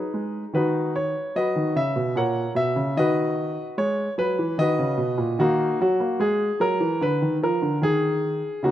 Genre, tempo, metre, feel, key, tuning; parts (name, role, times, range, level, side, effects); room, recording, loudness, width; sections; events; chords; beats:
classical, baroque-style suite movement for grand piano; 74 BPM; 3/4; rubato; A4 = 440 Hz
warm grand piano; solo; 0.0-8.7 s; A#2 to F#5; -21 LUFS; equal
light reverb; close, detailed microphones; -21 LUFS; side -12 dB against mid
0.0-8.7 A section
0.0 G#m; 0.5 B/D#; 2.2 F#7/A#; 3.0 B/D#; 5.4 D#m; 7.0 A#/D; 7.8 N.C.
| 0.54 1.35 2.15 | 2.96 3.77 4.58 | 5.38 6.19 7.01 | 7.82 8.63